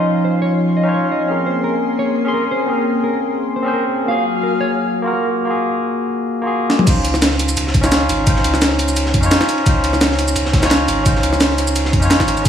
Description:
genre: liquid drum and bass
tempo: 172 BPM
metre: 4/4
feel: swing 54% on 16ths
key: Db major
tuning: A4 = 440 Hz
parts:
  - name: barky tine electric piano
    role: accompaniment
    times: 0.0-12.5 s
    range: Bb3 to C6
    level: -18 LUFS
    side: equal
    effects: overdrive, digital delay
  - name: lush unison pad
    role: sustained chords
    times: 0.0-5.5 s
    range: F3 to C6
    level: -20 LUFS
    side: left 1 dB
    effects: chorus, sidechain pumping
  - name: mellow electric guitar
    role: arpeggios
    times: 0.0-5.3 s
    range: Bb4 to F5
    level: -24 LUFS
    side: right 3 dB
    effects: digital delay
  - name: jungle sampler-style drum kit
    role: drums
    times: 6.7-12.5 s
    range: crash cymbal, hi-hat, shaker, snare drum, toms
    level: -18 LUFS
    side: equal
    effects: none
  - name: warm sub bass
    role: bass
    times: 6.9-12.5 s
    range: Ab1 to F2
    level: -20 LUFS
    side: left 1 dB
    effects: none
  - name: crunchy breakbeat drum kit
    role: drums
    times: 6.9-12.5 s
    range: ride cymbal, snare drum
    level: -25 LUFS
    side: equal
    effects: high-pass filter on cymbals, high-pass filter on snare, high-pass filter on room
  - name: electronic kick drum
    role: drums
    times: 6.9-12.5 s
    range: none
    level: -16 LUFS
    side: equal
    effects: overdrive
room: moderate concert hall reverb, RT60 2.6 s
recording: studio reverb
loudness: -14 LUFS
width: side -8 dB against mid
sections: 0.0-6.9 A section; 6.9-12.5 B section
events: drum fill 6.7; drop 6.9-12.5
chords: 0.0 Dbmaj9; 1.3 Bbm9; 4.1 Gbmaj9; 6.9 Dbmaj9

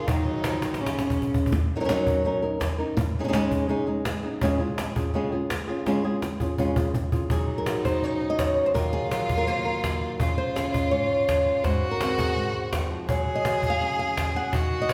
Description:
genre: flamenco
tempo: 166 BPM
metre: 4/4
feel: straight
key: Db major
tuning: A4 = 440 Hz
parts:
  - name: flamenco guitar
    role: melody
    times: 0.0-14.9 s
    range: Ab2 to Gb5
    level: -28 LUFS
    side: equal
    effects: none
  - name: rich violin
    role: second line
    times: 0.0-1.3, 7.3-14.9 s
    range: Db4 to Ab4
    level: -32 LUFS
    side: equal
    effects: none
  - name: cajon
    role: percussion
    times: 0.1-14.9 s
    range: none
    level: -30 LUFS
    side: equal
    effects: none
room: wet recital hall reverb, RT60 1.7 s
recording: recorded in a church or concert hall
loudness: -25 LUFS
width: mono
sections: 0.0-1.5 A section; 1.5-7.3 B section; 7.3-14.9 C section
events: drum fill 0.6-1.5, 5.9-7.3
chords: 0.1 Ebm; 0.8 N.C.; 1.5 Gb6; 3.0 Dbsus2; 4.4 Db; 7.3 Gb5; 8.8 Ebmadd9; 10.2 Db; 11.6 Ab; 13.1 Gb5

